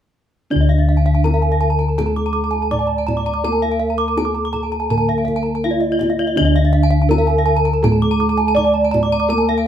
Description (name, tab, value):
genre	Balinese gamelan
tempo	82 BPM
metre	4/4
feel	straight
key	D pelog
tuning	A4 = 440 Hz
part	gamelan-type bronze metallophone	melody	0.5-9.7 s	D4 to D5	-20 LUFS	right 1 dB	none
part	gamelan-type bronze metallophone	accompaniment	0.5-9.7 s	D3 to Bb3-40c	-21 LUFS	left 1 dB	none
part	gamelan-type bronze metallophone	arpeggios	0.5-9.7 s	D5 to D6	-25 LUFS	left 5 dB	none
part	gamelan-type bossed gongs	bass	0.5-9.7 s	D2 to Bb4-40c	-20 LUFS	left 1 dB	none
part	kendang	percussion	0.5-9.6 s	none	-24 LUFS	right 1 dB	none
part	gamelan-type bronze metallophone	arpeggios	0.6-9.5 s	D5 to D6	-23 LUFS	right 5 dB	none
room	moderate studio reverb, RT60 0.8 s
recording	band playing live in one room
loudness	-14 LUFS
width	side -10 dB against mid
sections	0.5-9.7 A section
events	none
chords	none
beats	| 0.51 1.24 1.98 2.71 | 3.44 4.17 4.90 5.63 | 6.37 7.10 7.83 8.56 | 9.29